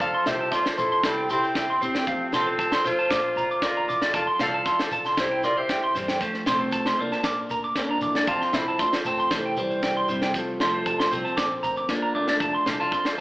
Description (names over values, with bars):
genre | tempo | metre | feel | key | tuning
highlife guitar band | 116 BPM | 4/4 | straight | F major | A4 = 440 Hz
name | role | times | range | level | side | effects
clean electric guitar | melody | 0.0-13.2 s | C3 to F5 | -28 LUFS | equal | phaser
clear trumpet | second line | 0.0-6.0 s | C4 to A4 | -30 LUFS | equal | none
nylon-string guitar | accompaniment | 0.0-13.2 s | Bb2 to C5 | -34 LUFS | equal | none
electric guitar through a small old amp | arpeggios | 0.0-13.2 s | C5 to D6 | -25 LUFS | right 1 dB | none
upright bass | bass | 0.0-13.2 s | F1 to C3 | -42 LUFS | equal | none
tight funk drum kit | drums | 0.0-13.2 s | kick drum, snare drum | -29 LUFS | equal | none
shekere | percussion | 0.0-13.1 s | none | -41 LUFS | equal | none
room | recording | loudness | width
moderate large studio reverb, RT60 1.3 s | band playing live in one room, AM radio sound | -22 LUFS | side -20 dB against mid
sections
0.0-6.2 A section; 6.2-13.2 A section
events
none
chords
0.0 F; 1.0 C; 2.1 F; 3.1 Bb; 4.1 F; 5.2 C; 6.2 F; 7.2 Bb; 8.3 F; 9.3 C; 10.3 F; 11.4 Bb; 12.4 F